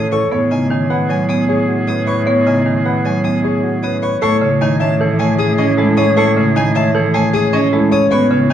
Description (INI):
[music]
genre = classical, minimalist pattern music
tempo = 154 BPM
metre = 5/4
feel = straight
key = A lydian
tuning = A4 = 440 Hz
[part]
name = warm concert grand piano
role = melody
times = 0.0-8.5 s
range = G#4 to G#5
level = -20 LUFS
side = left 6 dB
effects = none
[part]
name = clear oboe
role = second line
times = 0.0-8.5 s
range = G#4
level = -26 LUFS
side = right 2 dB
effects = none
[part]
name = rich violin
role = arpeggios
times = 0.0-8.5 s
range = D#5 to D#6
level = -26 LUFS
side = left 3 dB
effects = none
[part]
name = warm grand piano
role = arpeggios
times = 0.0-8.5 s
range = C#4 to C#5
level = -20 LUFS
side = right 4 dB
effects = none
[part]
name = rich cello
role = bass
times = 0.0-8.5 s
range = A2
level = -20 LUFS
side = right 2 dB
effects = none
[part]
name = marimba with hard mallets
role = accompaniment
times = 0.3-8.5 s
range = C#3 to C#4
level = -16 LUFS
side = equal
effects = none
[sound]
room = moderate large studio reverb, RT60 1.4 s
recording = dark, warm production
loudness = -12 LUFS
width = side -10 dB against mid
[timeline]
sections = 0.0-4.2 A section; 4.2-8.5 B section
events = none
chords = 0.3 B6/A; 4.2 Amaj7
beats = | 0.32 0.71 1.10 1.49 1.88 | 2.27 2.66 3.05 3.44 3.83 | 4.22 4.61 5.00 5.39 5.78 | 6.17 6.56 6.95 7.34 7.73 | 8.12 8.51